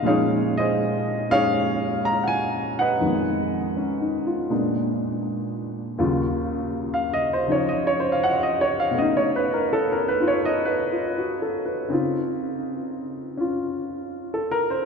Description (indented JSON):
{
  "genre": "solo jazz",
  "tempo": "81 BPM",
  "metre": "4/4",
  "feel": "swing 69% on 8ths",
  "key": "Bb minor",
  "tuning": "A4 = 441 Hz",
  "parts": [
    { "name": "warm baby grand piano", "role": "solo", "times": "0.0-14.9 s", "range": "Eb2 to Bb5", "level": "-21 LUFS", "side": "equal", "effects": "none" }
  ],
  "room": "wet cathedral reverb, RT60 4.9 s",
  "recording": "recorded in a church or concert hall",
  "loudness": "-21 LUFS",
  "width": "side -5 dB against mid",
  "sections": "0.0-6.0 A section; 6.0-14.9 B section",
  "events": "grand piano solo 6.0-14.9",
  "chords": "0.1 Bbm11; 3.0 Fm7b5; 4.5 Bb7b9; 6.0 Ebm9; 9.0 B9; 11.9 Dbmaj9"
}